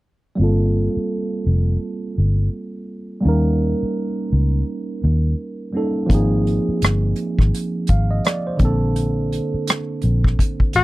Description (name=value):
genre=R&B, neo-soul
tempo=84 BPM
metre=4/4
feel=swing 61% on 16ths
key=G minor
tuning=A4 = 439 Hz
part: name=tine electric piano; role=accompaniment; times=0.4-10.8 s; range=D3 to F5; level=-22 LUFS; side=right 2 dB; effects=phaser, low-pass filter
part: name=vintage muted fingered electric bass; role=bass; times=0.4-10.8 s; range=F1 to Eb2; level=-18 LUFS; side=equal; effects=none
part: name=unplugged drum kit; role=drums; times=6.1-10.8 s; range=hi-hat, kick drum, rim click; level=-18 LUFS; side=equal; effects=none
part: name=warm tenor saxophone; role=melody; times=10.8 s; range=F#4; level=-13 LUFS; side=left 4 dB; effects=none
room=little or no reverb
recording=dry, close 1970s-style studio recording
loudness=-17 LUFS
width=side -18 dB against mid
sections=0.4-10.8 A section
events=filter sweep on tine electric piano 0.4-10.8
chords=0.4 Gm11; 3.2 Eb7; 6.1 Ab69; 8.6 Bbmaj9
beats=| 0.39 1.10 1.81 2.53 | 3.24 3.96 4.67 5.38 | 6.10 6.81 7.53 8.24 | 8.96 9.67 10.38